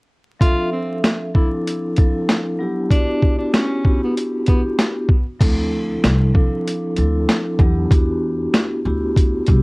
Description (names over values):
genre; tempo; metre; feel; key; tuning
hip hop, boom-bap hip-hop; 96 BPM; 4/4; swing 54% on 16ths; D dorian; A4 = 440 Hz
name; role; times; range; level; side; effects
breathy tenor saxophone; melody; 0.4-4.6 s; B3 to F4; -24 LUFS; equal; high-pass filter, low-pass filter, cassette tape, plate reverb, tape echo
vibraphone with soft mallets; accompaniment; 0.4-9.6 s; F3 to E5; -22 LUFS; equal; cassette tape, high-pass filter, low-pass filter
boom bap sampler-style drum kit; drums; 0.4-9.6 s; crash cymbal, hi-hat, kick drum, snare drum; -16 LUFS; equal; cassette tape
upright bass; bass; 5.4-9.6 s; C2 to E2; -20 LUFS; equal; none
room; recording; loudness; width
light reverb; home recording on cassette, vinyl crackle; -16 LUFS; side -27 dB against mid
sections
0.4-5.4 A section; 5.4-9.6 B section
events
none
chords
0.4 Dm9; 2.6 Em9; 5.4 Dm9; 7.6 Em9